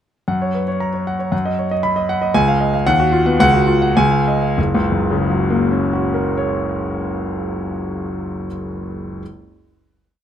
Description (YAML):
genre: classical, virtuoso piano study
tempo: 98-117 BPM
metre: 2/4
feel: rubato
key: F# major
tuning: A4 = 441 Hz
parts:
  - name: clear grand piano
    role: solo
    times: 0.3-9.2 s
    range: F#1 to B5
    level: -16 LUFS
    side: equal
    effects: none
room: light reverb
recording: close, detailed microphones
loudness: -16 LUFS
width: side -9 dB against mid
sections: 0.3-4.6 A section; 4.6-7.0 final chord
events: slowing down 1.8-4.6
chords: 0.3 F#; 1.3 B/F#; 2.4 C#; 2.9 B/D#; 3.4 F#5/C#; 4.0 C#; 4.6 F#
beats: | 0.28 0.80 | 1.32 1.84 | 2.35 2.87 | 3.40 3.97 | 4.57 5.18 | 5.79 6.40